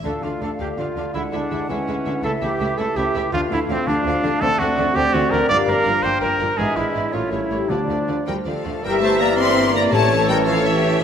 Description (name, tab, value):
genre	classical, dramatic, fast romantic movement for symphony orchestra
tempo	110 BPM (dotted quarters)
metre	6/8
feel	straight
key	D minor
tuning	A4 = 440 Hz
part	rich studio violin section	melody	0.0-11.0 s	C#5 to C6	-27 LUFS	left 6 dB	none
part	clear clarinet	second line	0.0-11.0 s	C4 to D5	-28 LUFS	left 1 dB	none
part	warm symphonic violin section	second line	0.0-11.0 s	A3 to E4	-32 LUFS	left 2 dB	none
part	mellow bassoon	accompaniment	0.0-11.0 s	D3 to C4	-29 LUFS	right 4 dB	none
part	rich symphonic viola section	accompaniment	0.0-11.0 s	E3 to E5	-30 LUFS	right 1 dB	none
part	mellow French horn section	sustained chords	0.0-11.0 s	E3 to F4	-28 LUFS	left 3 dB	none
part	concert harp	arpeggios	0.0-11.0 s	G2 to Bb5	-28 LUFS	left 5 dB	none
part	clear trumpet	stabs	0.0-11.0 s	C4 to D5	-23 LUFS	right 2 dB	none
part	rich symphonic cello section	bass	0.0-11.0 s	G2 to C4	-28 LUFS	right 2 dB	none
part	rich symphonic double bass section	bass	0.0-11.0 s	G1 to D2	-31 LUFS	right 3 dB	none
part	silver concert flute	second line	0.1-11.0 s	G4 to G5	-27 LUFS	equal	none
part	timpani	percussion	4.4-4.9, 7.7-10.4 s	A2 to D3	-28 LUFS	left 2 dB	none
part	clear trombone section	sustained chords	8.8-11.0 s	E3 to E4	-28 LUFS	right 4 dB	none
room	wet scoring stage reverb, RT60 1.9 s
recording	none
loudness	-17 LUFS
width	side -8 dB against mid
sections	0.0-8.8 A section; 8.8-11.0 B section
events	none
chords	0.0 Dm; 1.2 E7/D; 2.2 A/C#; 3.3 Dm; 4.4 D7; 5.5 Gm7; 6.6 E7/G#; 7.1 A7b9; 7.7 Dm; 8.8 Edim/G; 9.9 A